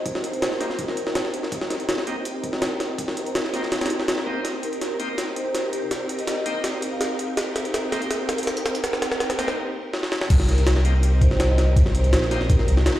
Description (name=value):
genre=drum and bass, jungle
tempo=164 BPM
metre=4/4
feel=straight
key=C minor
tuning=A4 = 440 Hz
part: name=soft string machine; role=sustained chords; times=0.0-13.0 s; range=C4 to Bb4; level=-29 LUFS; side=equal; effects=ensemble chorus
part: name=jungle sampler-style drum kit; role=drums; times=0.1-13.0 s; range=crash cymbal, hi-hat, kick drum, snare drum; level=-24 LUFS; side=equal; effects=high-pass filter on snare, high-pass filter on hats, high-pass filter on kick, high-pass filter on cymbals, high-pass filter on room
part: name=vibraphone with medium mallets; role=melody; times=0.2-1.2, 4.6-7.1, 10.5-12.9 s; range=G4 to F5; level=-31 LUFS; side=left 1 dB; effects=dub echo
part: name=bright tonewheel organ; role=stabs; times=0.6-12.4 s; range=Bb3 to G4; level=-33 LUFS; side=left 1 dB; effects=overdrive, slow rotary speaker, low-pass filter, dub echo
part: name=soft dub sub bass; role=bass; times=10.3-12.8 s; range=Bb1 to C2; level=-19 LUFS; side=equal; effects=tube saturation
room=moderate digital room reverb, RT60 1.1 s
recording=played on a big sound system in a bare room, stone room reverb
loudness=-21 LUFS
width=side -14 dB against mid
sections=0.0-10.3 A section; 10.3-13.0 B section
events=build-up 0.0-10.3; filter sweep on string machine 0.0-10.3; filter sweep on tonewheel organ 0.0-10.3; drum fill 4.4-9.6, 9.9-10.3; break 9.6-10.3; drop 10.3-13.0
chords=0.0 Cm7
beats=| 0.06 0.42 0.79 1.16 | 1.52 1.89 2.25 2.62 | 2.98 3.35 3.72 4.08 | 4.45 4.81 5.18 5.55 | 5.91 6.28 6.64 7.01 | 7.38 7.74 8.11 8.47 | 8.84 9.21 9.57 9.94 | 10.30 10.67 11.03 11.40 | 11.77 12.13 12.50 12.86